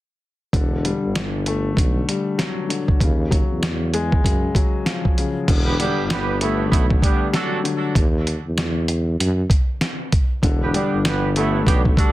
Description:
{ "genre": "hip hop, boom-bap hip-hop", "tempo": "97 BPM", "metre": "4/4", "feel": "swing 60% on 16ths", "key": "E minor", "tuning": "A4 = 440 Hz", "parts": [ { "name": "dark concert grand piano", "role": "accompaniment", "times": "0.5-12.1 s", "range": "C#3 to A3", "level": "-24 LUFS", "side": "left 4 dB", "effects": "high-pass filter, low-pass filter" }, { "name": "mellow tuba", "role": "bass", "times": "0.5-11.9 s", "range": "E1 to F#2", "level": "-23 LUFS", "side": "equal", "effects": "none" }, { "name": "dusty soul sampler-style drum kit", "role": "drums", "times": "0.5-12.1 s", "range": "crash cymbal, hi-hat, kick drum, snare drum", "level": "-19 LUFS", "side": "equal", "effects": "none" }, { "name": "mellow horn section", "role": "stabs", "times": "5.7-12.1 s", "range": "A3 to B4", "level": "-25 LUFS", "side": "right 6 dB", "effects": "high-pass filter, low-pass filter, digital delay" } ], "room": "little or no reverb", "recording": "dense, heavily limited modern master", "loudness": "-18 LUFS", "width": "side -16 dB against mid", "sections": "0.5-5.5 A section; 5.5-12.1 B section", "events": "none", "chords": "0.5 Em11; 3.0 D#m11; 5.5 Em11; 8.0 D#m; 10.4 Em11" }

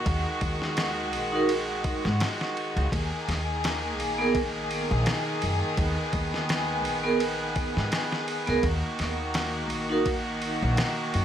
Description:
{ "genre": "trip hop", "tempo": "84 BPM", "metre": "4/4", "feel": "swing 55% on 16ths", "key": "Eb minor", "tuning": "A4 = 440 Hz", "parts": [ { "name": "rich chamber string section", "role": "sustained chords", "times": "0.0-11.2 s", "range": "Eb3 to Ab4", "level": "-29 LUFS", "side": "left 1 dB", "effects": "none" }, { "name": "upright bass", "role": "bass", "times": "0.1-11.2 s", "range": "Bb1 to Ab2", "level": "-30 LUFS", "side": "equal", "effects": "tube saturation" }, { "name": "dusty soul sampler-style drum kit", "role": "drums", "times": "0.1-11.2 s", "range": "kick drum, ride cymbal, snare drum", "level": "-31 LUFS", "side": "equal", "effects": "none" }, { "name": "vibraphone with hard mallets", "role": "accompaniment", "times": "1.3-10.1 s", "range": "Cb4 to Bb4", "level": "-28 LUFS", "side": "right 3 dB", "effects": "tremolo, tape echo" } ], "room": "light reverb, studio reverb", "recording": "echo-heavy mix, vinyl crackle", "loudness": "-25 LUFS", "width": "side -9 dB against mid", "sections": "0.0-11.2 A section", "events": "none", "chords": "0.0 Ebm; 2.9 Abmadd9; 8.6 Ebm" }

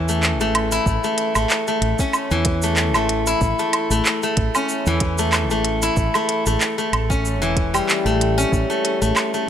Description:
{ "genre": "organic downtempo", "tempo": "94 BPM", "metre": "4/4", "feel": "swing 55% on 16ths", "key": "A major", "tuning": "A4 = 440 Hz", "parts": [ { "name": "steel-string zither", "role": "arpeggios", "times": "0.0-9.5 s", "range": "E3 to E4", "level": "-20 LUFS", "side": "left 2 dB", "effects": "digital delay, shimmer reverb" }, { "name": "mellow fretless electric bass", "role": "bass", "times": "0.0-9.1 s", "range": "E1 to E2", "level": "-22 LUFS", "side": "right 1 dB", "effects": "none" }, { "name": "organic electronic drum kit", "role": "drums", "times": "0.1-9.5 s", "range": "handclaps, hi-hat, shaker, woodblock", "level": "-23 LUFS", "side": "right 2 dB", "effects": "none" }, { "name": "electronic kick drum", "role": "drums", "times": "0.9-8.7 s", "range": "none", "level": "-23 LUFS", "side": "right 1 dB", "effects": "none" } ], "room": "light reverb, digital ambience", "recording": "none", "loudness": "-17 LUFS", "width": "side -9 dB against mid", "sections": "0.0-9.5 A section", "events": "none", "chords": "0.0 A" }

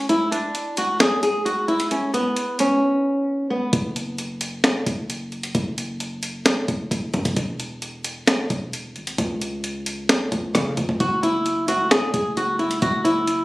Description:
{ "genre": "hip hop, trap", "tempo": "132 BPM", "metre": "4/4", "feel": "half-time", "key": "unclear", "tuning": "A4 = 440 Hz", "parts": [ { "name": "flamenco guitar", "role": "melody", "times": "0.0-3.7, 11.0-13.4 s", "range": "B3 to G#4", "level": "-20 LUFS", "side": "equal", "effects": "low-pass filter, tape echo" }, { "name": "breakbeat sampler-style drum kit", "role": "drums", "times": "0.1-13.4 s", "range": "hi-hat, kick drum, rim click, snare drum", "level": "-22 LUFS", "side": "equal", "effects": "none" }, { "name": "hard-hitting 808-style bass", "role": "bass", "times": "3.7-13.4 s", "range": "E1 to C#3", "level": "-28 LUFS", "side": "equal", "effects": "none" } ], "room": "moderate small room reverb, RT60 0.5 s", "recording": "recorded on a phone in the room, studio reverb", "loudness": "-20 LUFS", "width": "side -19 dB against mid", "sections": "0.0-13.4 A section", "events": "break 0.0-3.7, 3.7-11.0; drums muted 2.8-3.7", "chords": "0.0 N.C.; 11.0 C#madd11/F# (rootless)" }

